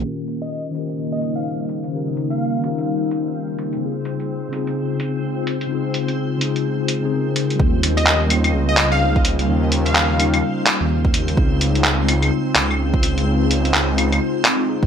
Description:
future garage; 127 BPM; 4/4; swing 61% on 16ths; A4 = 440 Hz
mellow tine electric piano; accompaniment; 0.0-14.9 s; Db3 to Bb4; -24 LUFS; left 3 dB; medium stereo tremolo, sidechain pumping, digital delay
ethereal airy pad; sustained chords; 0.0-14.9 s; Db3 to F4; -24 LUFS; left 1 dB; ensemble chorus, built-in reverb, sidechain pumping
swelling detuned saw bass; bass; 0.0, 7.6-14.9 s; Ab1 to Eb2; -20 LUFS; right 1 dB; sidechain pumping
backwards swelling texture; texture; 0.7-14.9 s; C4 to C5; -32 LUFS; right 2 dB; built-in reverb, lush chorus
lo-fi sampler-style drum kit; drums; 0.3-14.6 s; claves, handclaps, hi-hat; -19 LUFS; equal
plucky unison lead; melody; 0.4-3.0, 8.0-10.5 s; Eb5 to F5; -26 LUFS; equal; digital delay
electronic kick drum; drums; 7.6-14.9 s; -18 LUFS; right 1 dB; overdrive
moderate plate reverb, RT60 1.1 s; bright 1980s-style digital production, low-pass filter; -17 LUFS; side -8 dB against mid
0.0-7.6 A section; 7.6-14.9 B section
filter sweep on ambient pad 0.0-7.6; filter sweep 0.0-7.6
0.0 Eb7; 3.8 Dbmaj7; 7.6 Eb7; 11.4 Dbmaj7

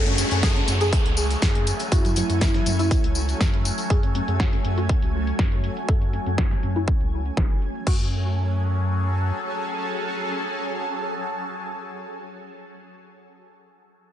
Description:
progressive house; 121 BPM; 4/4; straight; F# minor; A4 = 440 Hz
warm velvety synth lead; melody; 0.0-3.8 s; E4 to A4; -31 LUFS; equal; chorus, vintage 12-bit sampler grit, dub echo
shimmering ambient pad; sustained chords; 0.0-12.2 s; F#3 to G#5; -29 LUFS; equal; chorus, built-in reverb, phaser, sidechain pumping
soft round pluck; arpeggios; 0.0-12.2 s; F#3 to A4; -30 LUFS; equal; ensemble chorus, sidechain pumping, dub echo
round analog bass; bass; 0.0-9.3 s; F#1 to F#2; -25 LUFS; equal; sidechain pumping
downlifter; sound effects; 0.0-3.9 s; -30 LUFS; left 1 dB
deep house drum kit; drums; 0.1-8.0 s; crash cymbal, hi-hat, snare drum; -30 LUFS; equal; low-pass filter on hats, low-pass filter on snare, low-pass filter on cymbals, low-pass filter on room
tambourine; percussion; 0.2-3.9 s; -31 LUFS; left 4 dB
electronic kick drum; drums; 0.4-8.0 s; -22 LUFS; equal
light reverb, digital ambience; nothing above 10.9 kHz; -20 LUFS; side -11 dB against mid
0.0-7.9 A section; 7.9-11.8 B section
filter sweep on drum 0.0-7.9; filter sweep on analog synth bass 0.0-7.9; filter sweep on synth pluck 0.0-7.9; filter sweep on ambient pad 0.0-7.9
0.0 F#madd9

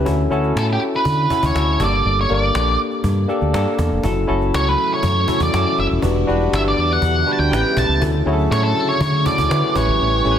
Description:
polished 1980s jazz-funk pop; 121 BPM; 4/4; straight; D major; A4 = 439 Hz
barky tine electric piano; accompaniment; 0.0-10.4 s; Bb3 to B4; -21 LUFS; left 2 dB; lush chorus
fingered electric bass; bass; 0.0-10.4 s; Eb1 to D3; -20 LUFS; equal
cajon; drums; 0.1-10.3 s; -28 LUFS; equal
octave-fuzz lead guitar; melody; 0.6-10.4 s; G4 to A5; -20 LUFS; right 1 dB; distortion
string machine, full ensemble; sustained chords; 4.0-10.4 s; C#3 to G4; -26 LUFS; left 1 dB; phaser, ensemble chorus
light reverb; -15 LUFS; side -9 dB against mid
0.0-10.4 A section
0.1 Dmaj7; 1.8 Gmadd9; 4.0 F#m7; 6.0 Em7; 7.5 A9; 8.0 Dmaj7; 9.8 A7

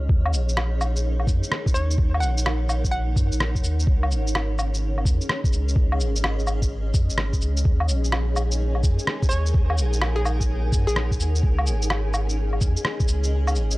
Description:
future garage; 127 BPM; 4/4; swing 65% on 16ths; Eb minor; A4 = 438 Hz
granular cloud pad; sustained chords; 0.0-13.8 s; Db4 to Gb5; -32 LUFS; equal; built-in reverb, sidechain pumping
warm sub bass; bass; 0.0-13.8 s; Ab1 to Gb2; -23 LUFS; equal; sidechain pumping
flickering grainy texture; texture; 0.0-0.1, 8.2-13.8 s; F3 to F6; -36 LUFS; left 2 dB; built-in reverb
electronic kick drum; drums; 0.1-13.1 s; -21 LUFS; equal; small room ambience
electronic woodblock, cabasa, shaker and rim click; drums; 0.3-13.8 s; -27 LUFS; equal; low-pass filter on perc, small room ambience, low-pass filter on snare
hollow square pluck; melody; 1.7-3.6, 9.3-11.3 s; Ab4 to Gb5; -32 LUFS; equal; chorus, analog delay
little or no reverb; dry, gritty hardware recording, cassette tape; -20 LUFS; side -20 dB against mid
0.1-13.8 A section
kick drops out 13.3-13.8
0.1 Ebm7; 3.9 Dbsus2; 7.7 Ebm7; 11.4 Dbsus2

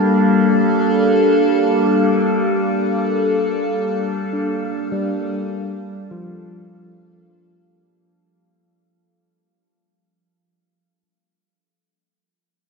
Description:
ambient; free time; G minor; A4 = 438 Hz
evolving wavetable pad; sustained chords; 0.0-7.9 s; G3 to F5; -16 LUFS; equal; phaser, built-in reverb
tine electric piano; arpeggios; 0.0-11.0 s; F3 to A5; -29 LUFS; equal; medium tremolo, ping-pong delay
wet huge ambient reverb, RT60 8.6 s; nothing above 7.8 kHz; -15 LUFS; side -4 dB against mid
0.0-7.9 A section
filter sweep on ambient pad 0.0-7.9; fade-out 1.6-7.9
0.0 Gm7

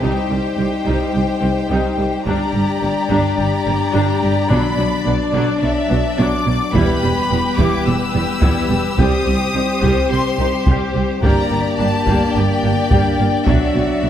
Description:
cinematic, epic orchestral film score; 107 BPM; 4/4; straight; A4 = 441 Hz
clear studio violin section; melody; 0.0-14.1 s; D5 to E6; -24 LUFS; left 3 dB
rich chamber violin section; second line; 0.0-14.1 s; D4 to D5; -23 LUFS; left 3 dB
rich symphonic viola section; accompaniment; 0.0-14.1 s; F#3 to G4; -24 LUFS; right 1 dB
mellow French horn section; sustained chords; 0.0-14.1 s; F#3 to Eb4; -22 LUFS; left 3 dB
clear symphonic double bass section; bass; 0.0-14.1 s; E1 to C2; -22 LUFS; right 3 dB
rich symphonic cello section; bass; 0.0-14.1 s; C2 to B2; -22 LUFS; right 2 dB
taiko ensemble; drums; 2.3-3.4, 6.7-14.0 s; -20 LUFS; equal
timpani; percussion; 4.5-5.3 s; B2; -24 LUFS; equal
moderate concert hall reverb, RT60 1.8 s; -14 LUFS; side -10 dB against mid
0.0-14.1 A section
0.0 Cm; 2.3 Gm; 4.5 Bm; 6.7 Em; 9.0 Cm; 11.2 Gm; 13.5 Bm

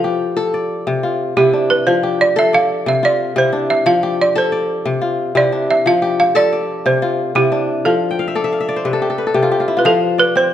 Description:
west african traditional; 120 BPM (dotted quarters); 12/8; straight; F major; A4 = 440 Hz
balafon; melody; 0.0-10.5 s; G4 to F5; -15 LUFS; right 3 dB
kora; arpeggios; 0.0-10.5 s; C3 to G5; -16 LUFS; left 3 dB
moderate recital hall reverb, RT60 1.8 s; -13 LUFS; side -10 dB against mid
0.0-9.8 A section
kora fill 8.1-9.8
0.0 F; 0.9 C; 1.9 F; 2.9 C; 3.9 F; 4.9 C; 5.9 F; 6.9 C; 7.9 F; 8.8 N.C.; 9.8 F

